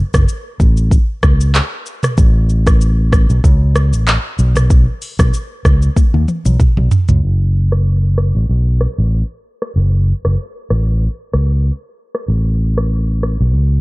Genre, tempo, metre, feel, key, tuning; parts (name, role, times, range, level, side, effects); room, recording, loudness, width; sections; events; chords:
afrobeats; 95 BPM; 4/4; swing 55% on 16ths; F# minor; A4 = 440 Hz
fingered electric bass; bass; 0.1-13.8 s; F#1 to D#2; -12 LUFS; equal
afro-pop drum kit; drums; 0.1-13.4 s; handclaps, hi-hat, kick drum, rim click, shaker, toms; -14 LUFS; equal; vintage 12-bit sampler grit
digital ambience; dark, warm production, low-pass filter; -12 LUFS; side -23 dB against mid
0.0-7.2 A section; 7.2-13.8 B section
drum fill 6.0-7.2; filter sweep 7.2-13.8